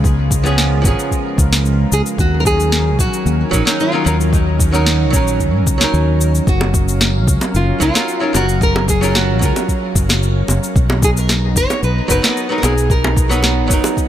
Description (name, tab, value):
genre	sunset chillout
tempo	112 BPM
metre	4/4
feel	straight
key	F# major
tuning	A4 = 441 Hz
part	lush unison pad	sustained chords	0.0-14.1 s	C#3 to A#5	-23 LUFS	left 1 dB	chorus, shimmer reverb
part	fretless electric bass	bass	0.0-13.8 s	F#1 to G#2	-16 LUFS	equal	none
part	electronic cabasa and snare drum	drums	0.0-14.1 s	none	-19 LUFS	left 1 dB	overdrive
part	electronic kick drum	drums	0.0-14.1 s	none	-17 LUFS	equal	overdrive
part	archtop guitar, miked and amplified	accompaniment	0.4-14.1 s	E#3 to A#4	-21 LUFS	moving between left 1 dB and right 5 dB	auto-pan, vintage 12-bit sampler grit, ping-pong delay, shimmer reverb
part	nylon-string guitar	melody	1.9-13.4 s	D#4 to C#5	-21 LUFS	equal	ping-pong delay, shimmer reverb
part	bongos	percussion	6.6-13.9 s	none	-23 LUFS	right 2 dB	none
room	light reverb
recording	none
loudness	-12 LUFS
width	side -11 dB against mid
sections	0.0-14.1 A section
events	none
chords	0.0 C#7; 2.2 D#m7; 6.5 F#maj7; 10.8 Bmaj7